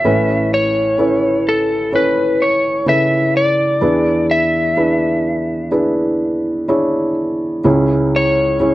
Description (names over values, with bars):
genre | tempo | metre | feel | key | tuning
pop | 63 BPM | 4/4 | straight | A major | A4 = 439 Hz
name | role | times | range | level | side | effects
lightly driven lead guitar | melody | 0.0-8.7 s | A4 to E5 | -16 LUFS | left 1 dB | slapback echo
felt-muted upright piano | accompaniment | 0.0-8.7 s | A1 to C#5 | -15 LUFS | right 1 dB | none
room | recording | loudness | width
light reverb | dry, close 1970s-style studio recording | -13 LUFS | side -16 dB against mid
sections
0.0-7.6 A section; 7.6-8.7 B section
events
none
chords
0.1 Aadd9; 3.8 E7; 7.6 C#m